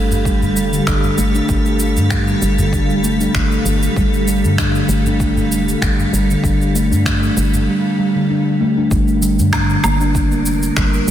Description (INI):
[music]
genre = organic downtempo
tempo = 97 BPM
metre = 4/4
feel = swing 54% on 16ths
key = unclear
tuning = A4 = 440 Hz
[part]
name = granular cloud pad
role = sustained chords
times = 0.0-11.1 s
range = G3 to F5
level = -24 LUFS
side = right 1 dB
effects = built-in reverb, sidechain pumping
[part]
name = woody FM bass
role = bass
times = 0.0-11.1 s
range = F1 to G2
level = -19 LUFS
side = equal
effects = sidechain pumping
[part]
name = quartz singing bowl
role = texture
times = 0.0-7.7 s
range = A4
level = -33 LUFS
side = right 6 dB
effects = none
[part]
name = electronic shaker, finger snaps and woodblock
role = drums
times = 0.1-11.1 s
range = none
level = -23 LUFS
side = equal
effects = overdrive, soft clipping on snare
[part]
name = udu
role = percussion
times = 0.1-7.7 s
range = none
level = -24 LUFS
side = left 1 dB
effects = none
[part]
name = steel tongue drum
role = arpeggios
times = 0.2-11.1 s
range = D3 to D4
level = -17 LUFS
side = equal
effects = digital delay
[part]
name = electronic kick drum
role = drums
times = 0.3-10.9 s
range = none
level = -20 LUFS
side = equal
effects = overdrive
[sound]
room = light reverb, digital ambience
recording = dense, heavily limited modern master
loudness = -13 LUFS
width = side -11 dB against mid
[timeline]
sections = 0.0-8.9 A section; 8.9-11.1 B section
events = none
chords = 0.0 F; 8.9 Gm7